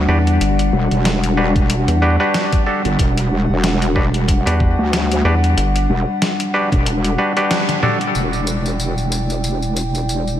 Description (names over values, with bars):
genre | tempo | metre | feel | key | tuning
glitch hop | 93 BPM | 4/4 | swing 56% on 16ths | E minor | A4 = 440 Hz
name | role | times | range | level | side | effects
dark analog pad | sustained chords | 0.0-10.4 s | G3 to G5 | -21 LUFS | left 1 dB | chorus, sidechain pumping
clav | stabs | 0.0-8.0 s | D4 to B4 | -22 LUFS | equal | sidechain pumping, ping-pong delay
wobble bass | bass | 0.0-10.4 s | E1 to D2 | -18 LUFS | equal | chorus
rubbery square bass | bass | 0.1-5.9 s | G1 to E2 | -16 LUFS | equal | none
boom bap sampler-style drum kit | drums | 0.3-10.4 s | hi-hat, snare drum, tambourine, toms | -24 LUFS | equal | studio ambience
electronic kick drum | drums | 1.6-6.8 s | none | -17 LUFS | equal | studio ambience
room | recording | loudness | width
moderate cathedral reverb, RT60 5.3 s | dreamy mix soaked in reverb | -14 LUFS | side -11 dB against mid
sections
0.0-8.2 A section; 8.2-10.4 B section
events
band accent 7.5-7.8; drum fill 7.7-8.2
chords
0.0 Em7